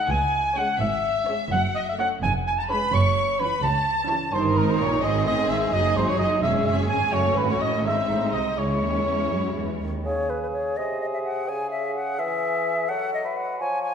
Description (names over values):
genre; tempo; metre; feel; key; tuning
quick classical-period movement for symphony orchestra; 85 BPM (dotted quarters); 6/8; straight; C# minor; A4 = 443 Hz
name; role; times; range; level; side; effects
rich chamber violin section; melody; 0.0-9.8 s; D#4 to C#5; -33 LUFS; left 3 dB; none
dark cor anglais; second line; 0.0-13.9 s; G#4 to A5; -25 LUFS; right 1 dB; none
warm symphonic violin section; second line; 0.0-9.8 s; A#4 to C#6; -30 LUFS; left 3 dB; none
warm studio viola section; accompaniment; 0.0-9.8 s; D#3 to D#4; -28 LUFS; right 2 dB; none
clear chamber double bass section; bass; 0.1-10.0 s; E1 to F#2; -29 LUFS; right 2 dB; none
warm chamber cello section; bass; 0.1-10.0 s; C#2 to F#3; -30 LUFS; right 2 dB; none
mellow silver concert flute; second line; 10.1-13.9 s; B4 to G#5; -26 LUFS; left 3 dB; none
mellow bassoon; accompaniment; 10.1-13.9 s; B#2 to F#3; -30 LUFS; right 1 dB; none
room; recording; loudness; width
moderate scoring stage reverb, RT60 1.9 s; minimal, uncompressed stereo recording; -21 LUFS; side -7 dB against mid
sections
0.0-10.1 A section; 10.1-13.9 A section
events
none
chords
0.1 C#m; 1.5 F#m; 2.2 C#/E#; 2.9 F#m7; 4.3 D#/G; 5.0 G#; 5.7 G#5/F#; 6.4 C#m/E; 7.1 F#m; 7.8 G#; 8.6 C#m; 10.1 C#5; 10.8 G#/B#; 11.5 C#m; 12.9 F#m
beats
| 0.10 0.81 | 1.52 2.23 | 2.93 3.63 | 4.33 5.03 | 5.73 6.43 | 7.13 7.85 | 8.58 9.32 | 10.05 10.78 | 11.48 12.20 | 12.90 13.61